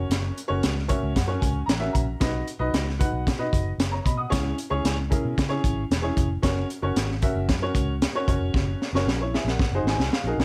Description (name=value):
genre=uptempo 1960s-style soul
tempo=114 BPM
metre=4/4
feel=straight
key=unclear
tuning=A4 = 442 Hz
part: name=warm upright piano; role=accompaniment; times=0.0-10.4 s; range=C#4 to D#6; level=-30 LUFS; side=equal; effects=plate reverb
part: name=vintage muted fingered electric bass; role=bass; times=0.0-10.4 s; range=E1 to C#3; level=-30 LUFS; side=equal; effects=none
part: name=crunchy breakbeat drum kit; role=drums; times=0.1-10.4 s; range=hi-hat, kick drum, snare drum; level=-28 LUFS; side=equal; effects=none
room=light reverb, small room ambience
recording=none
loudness=-25 LUFS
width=mono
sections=0.0-10.4 A section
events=upright piano fill 0.6-2.2, 9.6-10.4; drum fill 8.5-10.4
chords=0.0 F#; 2.2 B; 4.3 C#m; 6.4 F#; 9.6 G#7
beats=| 0.11 0.63 1.16 1.69 | 2.22 2.74 3.27 3.80 | 4.33 4.85 5.38 5.91 | 6.43 6.96 7.49 8.02 | 8.54 9.07 9.60 10.12